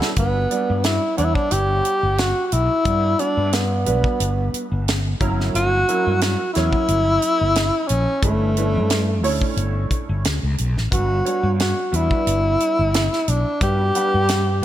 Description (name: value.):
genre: electric jazz fusion.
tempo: 89 BPM.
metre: 4/4.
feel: swing 53% on 16ths.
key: G lydian.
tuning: A4 = 436 Hz.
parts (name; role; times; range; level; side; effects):
clear concert grand piano; accompaniment; 0.0-14.6 s; F#3 to F#5; -27 LUFS; right 3 dB; ensemble chorus.
tight funk drum kit; drums; 0.0-14.6 s; hi-hat, kick drum, snare drum; -24 LUFS; equal; none.
breathy tenor saxophone; melody; 0.2-14.6 s; A3 to G4; -20 LUFS; equal; none.
fretless electric bass; bass; 0.2-14.6 s; G1 to G2; -21 LUFS; equal; lush chorus.
room: light reverb.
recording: bright 1980s-style digital production.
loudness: -17 LUFS.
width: side -12 dB against mid.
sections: 0.2-14.6 A section.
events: drum fill 0.0.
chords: 0.2 Gmaj7; 5.2 F#7/G; 8.2 Bm11/G; 10.9 Gmaj7.